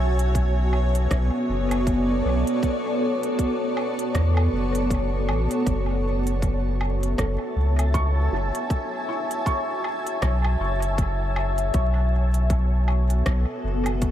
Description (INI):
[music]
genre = ambient dub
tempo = 79 BPM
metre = 4/4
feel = swing 58% on 16ths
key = unclear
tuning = A4 = 440 Hz
[part]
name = granular cloud pad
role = sustained chords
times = 0.0-14.1 s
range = B3 to A5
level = -25 LUFS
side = equal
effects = built-in reverb
[part]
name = warm sub bass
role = bass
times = 0.0-14.1 s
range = F#1 to E2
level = -22 LUFS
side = equal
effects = none
[part]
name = organic electronic drum kit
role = drums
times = 0.2-14.1 s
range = hi-hat, rim click, woodblock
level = -34 LUFS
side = right 1 dB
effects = overdrive, dub echo
[part]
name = electronic kick drum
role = drums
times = 0.3-14.1 s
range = none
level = -25 LUFS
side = equal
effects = overdrive
[part]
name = felt-muted upright piano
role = arpeggios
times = 7.2-14.1 s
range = E4 to C#6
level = -34 LUFS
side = right 1 dB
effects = lush chorus, ping-pong delay
[sound]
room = light reverb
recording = vinyl crackle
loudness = -21 LUFS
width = side -11 dB against mid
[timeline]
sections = 0.0-14.1 A section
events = none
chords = 0.0 Bm9; 5.7 F#m9; 11.7 Bm9